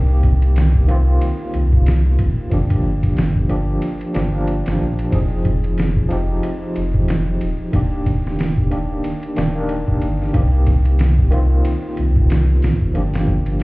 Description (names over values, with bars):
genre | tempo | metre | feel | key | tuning
trip hop | 92 BPM | 4/4 | swing 57% on 16ths | unclear | A4 = 439 Hz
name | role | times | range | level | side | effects
overdriven tine electric piano | accompaniment | 0.0-13.6 s | Eb3 to Bb4 | -22 LUFS | equal | tremolo, vintage 12-bit sampler grit, tape echo
soft dub sub bass | bass | 0.0-13.6 s | Eb1 to C2 | -17 LUFS | equal | tube saturation
trip hop sampler-style drum kit | drums | 0.2-13.6 s | hi-hat, kick drum, ride cymbal, snare drum | -19 LUFS | equal | none
room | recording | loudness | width
digital ambience | heard muffled through a wall, club reverb, vinyl crackle, EQ | -15 LUFS | side -22 dB against mid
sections
0.0-13.6 A section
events
none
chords
0.0 Cm7; 2.5 Gm7; 5.1 Fm7; 7.7 Ebmaj7; 10.3 Cm7; 12.9 Gm7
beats
0.56 1.21 1.86 | 2.52 3.17 3.82 4.47 | 5.12 5.78 6.43 7.08 | 7.73 8.38 9.04 9.69 | 10.34 10.99 11.65 12.30 | 12.95 13.60